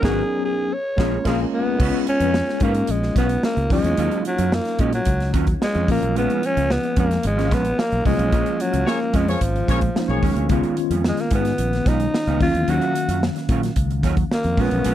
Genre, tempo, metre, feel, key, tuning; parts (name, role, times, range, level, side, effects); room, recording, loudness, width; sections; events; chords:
polished 1980s jazz-funk pop; 110 BPM; 4/4; straight; Eb minor; A4 = 436 Hz
breathy alto saxophone; melody; 0.0-14.9 s; F3 to Db5; -23 LUFS; equal
tine electric piano; accompaniment; 0.0-14.9 s; Eb3 to F5; -25 LUFS; left 3 dB; medium stereo tremolo, lush chorus
mellow electric guitar; riff; 0.0-14.9 s; Gb3 to Cb5; -26 LUFS; right 6 dB; ensemble chorus
fingered electric bass; bass; 0.0-14.9 s; Ab1 to Bb2; -23 LUFS; equal
modern studio drum kit; drums; 0.0-14.9 s; crash cymbal, hi-hat, kick drum, snare drum; -24 LUFS; equal
warm horn section; second line; 8.9-10.5 s; Bb3 to Db5; -29 LUFS; left 3 dB; tape echo
little or no reverb; dry, close 1970s-style studio recording; -18 LUFS; side -12 dB against mid
0.0-1.8 A section; 1.8-14.9 B section
band accent 0.0-1.8, 8.3-10.5
0.0 Abm11; 0.7 Bbm7; 1.8 Db7; 3.7 Ebm9; 5.9 Bbm7; 10.5 Db7; 12.4 Ebm9